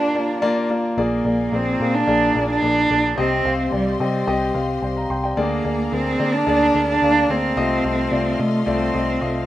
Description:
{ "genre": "piano-driven pop", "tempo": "109 BPM", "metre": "4/4", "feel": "straight", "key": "unclear", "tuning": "A4 = 440 Hz", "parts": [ { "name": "dark cello", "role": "melody", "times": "0.0-9.5 s", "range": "G3 to D4", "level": "-20 LUFS", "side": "right 2 dB", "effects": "none" }, { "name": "warm concert grand piano", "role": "accompaniment", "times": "0.0-9.5 s", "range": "Bb2 to C6", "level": "-22 LUFS", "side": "left 2 dB", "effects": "none" }, { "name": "rich studio string section", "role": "sustained chords", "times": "0.0-9.5 s", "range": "F4 to C6", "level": "-34 LUFS", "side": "left 2 dB", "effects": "none" }, { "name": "vintage muted picked electric bass", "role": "bass", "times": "1.0-9.4 s", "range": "Bb1 to D3", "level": "-27 LUFS", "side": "equal", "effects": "none" } ], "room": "moderate studio ambience, RT60 0.5 s", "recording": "rough home demo mix", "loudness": "-17 LUFS", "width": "side -14 dB against mid", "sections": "1.0-9.5 A section", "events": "break 0.0-1.0", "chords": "0.0 Bb; 1.0 Bb7; 3.2 Cm; 5.4 Bb7/D; 7.6 F7/C" }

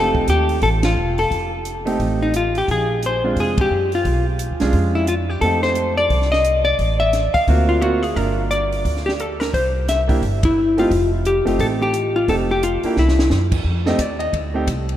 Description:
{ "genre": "jazz, small-group swing and bop", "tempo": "175 BPM", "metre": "4/4", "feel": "swing 62% on 8ths", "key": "F mixolydian", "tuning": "A4 = 437 Hz", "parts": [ { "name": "hollow-body jazz guitar", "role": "melody", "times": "0.0-13.3 s", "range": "Eb4 to F5", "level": "-19 LUFS", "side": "left 2 dB", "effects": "none" }, { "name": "clear concert grand piano", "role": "accompaniment", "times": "0.0-14.7 s", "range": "Ab3 to Eb5", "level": "-24 LUFS", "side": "right 3 dB", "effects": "none" }, { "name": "upright bass", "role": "bass", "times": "0.0-15.0 s", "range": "E1 to Gb2", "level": "-21 LUFS", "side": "equal", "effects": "none" }, { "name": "compact cocktail drum kit", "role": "drums", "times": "0.1-14.9 s", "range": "crash cymbal, hi-hat, kick drum, ride cymbal, snare drum", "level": "-25 LUFS", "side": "right 1 dB", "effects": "none" } ], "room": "wet cathedral reverb, RT60 5.2 s", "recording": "in a vast, echoing space", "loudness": "-16 LUFS", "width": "side -11 dB against mid", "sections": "0.0-13.6 A section; 13.6-15.0 B section", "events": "band accent 0.8, 3.5, 10.4; drum fill 13.0-13.3", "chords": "0.0 F7; 2.7 Bb7; 4.0 Bdim7; 5.4 F7; 6.8 A5; 7.5 D7alt; 8.2 Gm7; 9.5 C; 10.9 F7; 13.0 C; 13.6 F7" }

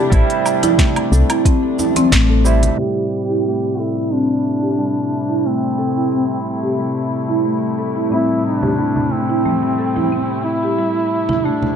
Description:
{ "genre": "organic downtempo", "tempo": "90 BPM", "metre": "4/4", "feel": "straight", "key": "A minor pentatonic", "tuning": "A4 = 439 Hz", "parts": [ { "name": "barky tine electric piano", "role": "accompaniment", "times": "0.0-11.8 s", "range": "A2 to E4", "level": "-23 LUFS", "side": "right 4 dB", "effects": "overdrive, lush chorus, sidechain pumping, tape echo" }, { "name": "dark chamber string section", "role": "sustained chords", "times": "0.0-11.8 s", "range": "C3 to E4", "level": "-24 LUFS", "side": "left 2 dB", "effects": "sidechain pumping, low-pass filter" }, { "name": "marimba with soft mallets", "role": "arpeggios", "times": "0.0-11.8 s", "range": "G3 to A4", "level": "-20 LUFS", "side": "equal", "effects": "low-pass filter, tape echo" }, { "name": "woody FM bass", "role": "bass", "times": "0.1-2.7 s", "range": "A1 to C2", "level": "-14 LUFS", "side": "equal", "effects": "sidechain pumping" }, { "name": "afro-pop drum kit", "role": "drums", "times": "0.1-2.8 s", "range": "hi-hat, shaker, snare drum, woodblock", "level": "-21 LUFS", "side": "right 1 dB", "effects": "studio reverb" }, { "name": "electronic kick drum", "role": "drums", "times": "0.1-2.3 s", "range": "none", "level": "-15 LUFS", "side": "equal", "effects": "overdrive, studio reverb" }, { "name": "congas", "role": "percussion", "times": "0.6-2.8, 8.6-11.8 s", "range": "none", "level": "-25 LUFS", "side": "right 2 dB", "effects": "none" }, { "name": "mellow duduk", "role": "melody", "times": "2.8-11.8 s", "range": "C4 to G4", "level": "-20 LUFS", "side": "left 1 dB", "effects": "tape echo" } ], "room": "moderate lush hall reverb, RT60 2.2 s", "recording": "dark, warm production, low-pass filter", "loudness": "-15 LUFS", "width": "side -8 dB against mid", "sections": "0.0-2.8 A section; 2.8-11.8 B section", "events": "filter sweep on marimba 0.0-2.8, 2.8-11.8; filter sweep on string section 2.8-11.8; filter sweep 2.8-11.8", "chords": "0.0 Am7" }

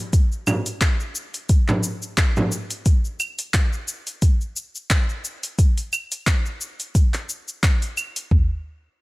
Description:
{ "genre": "downtempo", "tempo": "88 BPM", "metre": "4/4", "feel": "swing 55% on 16ths", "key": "none", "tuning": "none", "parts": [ { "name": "afro-pop drum kit", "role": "drums", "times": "0.1-8.5 s", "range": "kick drum, toms", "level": "-17 LUFS", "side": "equal", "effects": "studio reverb" }, { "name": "deep house drum kit", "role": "drums", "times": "0.1-8.3 s", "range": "cabasa, claves, handclaps, hi-hat", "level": "-25 LUFS", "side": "equal", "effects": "studio reverb" }, { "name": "frame drum", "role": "percussion", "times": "0.5-2.5 s", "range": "none", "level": "-23 LUFS", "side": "right 1 dB", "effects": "none" } ], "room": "digital ambience", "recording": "dry, gritty hardware recording", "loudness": "-20 LUFS", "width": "side -22 dB against mid", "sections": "0.0-8.3 A section", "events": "none", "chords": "none" }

